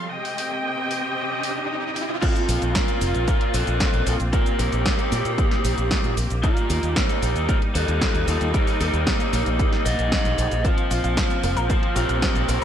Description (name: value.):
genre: italo disco.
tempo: 114 BPM.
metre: 4/4.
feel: straight.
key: unclear.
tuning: A4 = 441 Hz.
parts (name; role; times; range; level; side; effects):
clear symphonic string section; sustained chords; 0.0-12.6 s; C3 to G5; -28 LUFS; left 1 dB; none.
riser; sound effects; 0.0-2.2 s; none; -32 LUFS; right 2 dB; none.
house drum kit; drums; 0.2-12.6 s; cabasa, crash cymbal, hi-hat, snare drum; -28 LUFS; equal; studio reverb, gated reverb.
lead guitar through a small cranked amp; melody; 2.2-12.6 s; Bb3 to Eb5; -25 LUFS; equal; overdrive, tape echo.
electronic kick drum; drums; 2.2-12.3 s; none; -23 LUFS; equal; studio reverb.
fingered electric bass with an envelope filter; bass; 2.5-12.6 s; F1 to Bb2; -24 LUFS; equal; none.
analog pluck; arpeggios; 10.6-12.6 s; Bb3 to F5; -32 LUFS; left 3 dB; chorus, ping-pong delay.
room: little or no reverb.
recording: none.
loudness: -20 LUFS.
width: side -9 dB against mid.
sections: 0.0-2.2 A section; 2.2-12.6 B section.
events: riser 0.0-2.2.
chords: 0.1 Cm; 2.2 Bbsus2; 6.4 Eb; 10.6 Bbsus2.